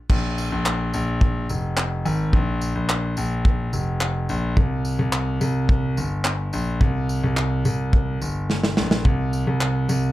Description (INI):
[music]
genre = acoustic pop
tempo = 107 BPM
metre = 4/4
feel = straight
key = unclear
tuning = A4 = 441 Hz
[part]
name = bright concert grand piano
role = bass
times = 0.1-10.1 s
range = F1 to C2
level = -22 LUFS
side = equal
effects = none
[part]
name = modern studio drum kit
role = drums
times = 0.1-10.0 s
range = crash cymbal, handclaps, kick drum, snare drum, tambourine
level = -22 LUFS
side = equal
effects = none
[sound]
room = little or no reverb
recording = dark, warm production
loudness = -20 LUFS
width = side -16 dB against mid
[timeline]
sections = 0.1-10.1 A section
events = drum fill 8.5-9.1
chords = none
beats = | 0.10 0.65 1.21 1.77 | 2.33 2.89 3.45 4.01 | 4.57 5.13 5.69 6.25 | 6.81 7.37 7.93 8.49 | 9.05 9.61